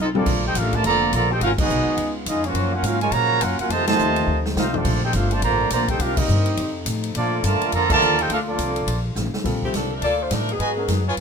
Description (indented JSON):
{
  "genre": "jazz, big band swing",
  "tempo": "209 BPM",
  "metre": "4/4",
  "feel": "swing 61% on 8ths",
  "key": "Bb major",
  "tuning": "A4 = 440 Hz",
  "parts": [
    { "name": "warm trumpet section", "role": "melody", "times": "0.0-9.0 s", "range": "Bb3 to Bb5", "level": "-22 LUFS", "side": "right 3 dB", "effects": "none" },
    { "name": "clear trombone section", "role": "second line", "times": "0.0-9.0 s", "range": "C3 to A4", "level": "-26 LUFS", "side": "equal", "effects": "none" },
    { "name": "clear trombone section", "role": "sustained chords", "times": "0.0-9.4 s", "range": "C3 to A4", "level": "-33 LUFS", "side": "left 1 dB", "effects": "none" },
    { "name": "upright bass", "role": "bass", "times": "0.0-11.2 s", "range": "F1 to Bb2", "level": "-24 LUFS", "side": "left 1 dB", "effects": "none" },
    { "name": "warm baby grand piano", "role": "accompaniment", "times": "0.1-0.3, 9.4-10.9 s", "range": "Bb2 to Bb4", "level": "-27 LUFS", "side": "left 6 dB", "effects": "none" },
    { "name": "swinging big-band drum kit", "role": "drums", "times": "0.1-11.2 s", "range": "crash cymbal, hi-hat, kick drum, ride cymbal, snare drum, toms", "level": "-27 LUFS", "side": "equal", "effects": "none" },
    { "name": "clear saxophone section", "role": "melody", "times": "9.6-11.2 s", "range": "Eb3 to D5", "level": "-24 LUFS", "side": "left 2 dB", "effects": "none" },
    { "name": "clear trumpet section", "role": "stabs", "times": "10.0-11.1 s", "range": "F4 to A5", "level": "-27 LUFS", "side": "equal", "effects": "none" }
  ],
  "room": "light reverb",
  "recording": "minimal, uncompressed stereo recording",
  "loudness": "-18 LUFS",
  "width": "side -6 dB against mid",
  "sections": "0.3-9.4 A section; 9.4-11.2 B section",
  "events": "drum fill 0.0, 4.3-4.8, 9.2; band accent 1.6, 3.8, 6.1, 7.9",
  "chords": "0.3 Bbmaj7; 1.4 Abm7; 2.0 Db7; 2.6 Gbmaj7; 3.7 F7; 4.8 Bbmaj9; 6.0 Cm7; 6.6 F7; 7.1 Bbmaj7; 10.6 Abm7"
}